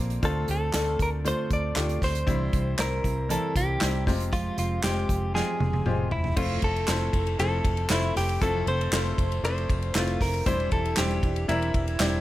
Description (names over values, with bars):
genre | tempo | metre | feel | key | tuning
piano-driven pop | 117 BPM | 4/4 | straight | unclear | A4 = 441 Hz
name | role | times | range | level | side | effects
bright upright piano | accompaniment | 0.0-12.2 s | G2 to G5 | -32 LUFS | left 4 dB | none
fingerpicked steel-string acoustic guitar | riff | 0.0-12.2 s | C3 to C5 | -35 LUFS | right 5 dB | none
vintage muted fingered electric bass | bass | 0.0-12.2 s | E1 to D2 | -28 LUFS | equal | none
unplugged drum kit | drums | 0.1-12.1 s | crash cymbal, handclaps, hi-hat, kick drum, ride cymbal, snare drum, toms | -29 LUFS | equal | none
direct-recorded clean electric guitar | melody | 0.3-12.2 s | E4 to D5 | -30 LUFS | equal | none
group handclap | percussion | 6.9-12.1 s | none | -37 LUFS | right 4 dB | none
room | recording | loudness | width
small room reverb | none | -23 LUFS | side -15 dB against mid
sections
0.0-6.4 A section; 6.4-12.2 B section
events
drum fill 5.3-6.4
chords
0.2 Dm7; 2.3 C; 4.1 Fmadd9; 6.4 Fmaj7; 10.5 Cadd9/E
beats
| 0.23 0.74 1.25 1.77 | 2.28 2.79 3.30 3.81 | 4.32 4.83 5.35 5.86 | 6.37 6.88 7.39 7.90 | 8.41 8.93 9.44 9.95 | 10.46 10.97 11.48 12.00